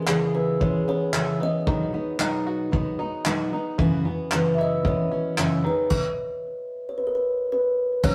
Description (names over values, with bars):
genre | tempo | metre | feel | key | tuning
acoustic pop | 113 BPM | 4/4 | swing 55% on 16ths | B major | A4 = 440 Hz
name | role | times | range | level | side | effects
kalimba | melody | 0.0-8.1 s | G#4 to E5 | -28 LUFS | equal | tape echo
fingerpicked steel-string acoustic guitar | accompaniment | 0.0-8.1 s | F#2 to G#4 | -27 LUFS | equal | none
bluegrass banjo | arpeggios | 0.0-8.1 s | D#3 to F#4 | -37 LUFS | equal | none
vintage brush drum kit | drums | 0.1-8.1 s | crash cymbal, handclaps, kick drum | -28 LUFS | equal | none
room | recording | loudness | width
moderate stone room reverb, RT60 1.1 s | rough rehearsal-room recording | -24 LUFS | mono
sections
0.0-8.0 A section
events
stop 5.9-8.0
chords
0.0 C#m7; 1.7 B; 3.8 F#7sus4; 5.7 B6/D#